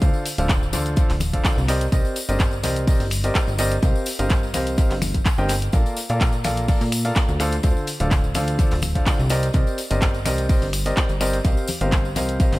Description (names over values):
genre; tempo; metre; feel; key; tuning
piano house; 126 BPM; 4/4; swing 53% on 16ths; C dorian; A4 = 440 Hz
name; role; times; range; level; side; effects
warm grand piano; riff; 0.0-12.5 s; D3 to G5; -25 LUFS; equal; sidechain pumping, tape echo
plucky analog bass; bass; 0.0-12.6 s; D1 to Bb2; -24 LUFS; equal; tube saturation, sidechain pumping
crisp fusion drum kit; drums; 0.0-12.5 s; hi-hat, snare drum; -40 LUFS; left 3 dB; none
electronic kick drum; drums; 0.0-12.5 s; none; -19 LUFS; equal; none
punchy analog drum machine; drums; 0.0-12.6 s; finger snaps, handclaps, hi-hat; -29 LUFS; equal; tape echo
tambourine and congas; percussion; 0.0-12.6 s; none; -32 LUFS; left 3 dB; tape echo
room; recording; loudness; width
small room ambience; echo-heavy mix; -18 LUFS; side -19 dB against mid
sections
0.0-12.6 A section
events
none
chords
0.0 Dm7; 1.7 Cm9; 3.8 F9sus4; 5.7 Bbmaj7; 7.4 Dm7; 9.3 Cm9; 11.4 F9sus4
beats
| 0.02 0.49 0.97 1.45 | 1.92 2.40 2.88 3.35 | 3.83 4.30 4.78 5.26 | 5.73 6.21 6.68 7.16 | 7.64 8.11 8.59 9.06 | 9.54 10.02 10.49 10.97 | 11.45 11.92 12.40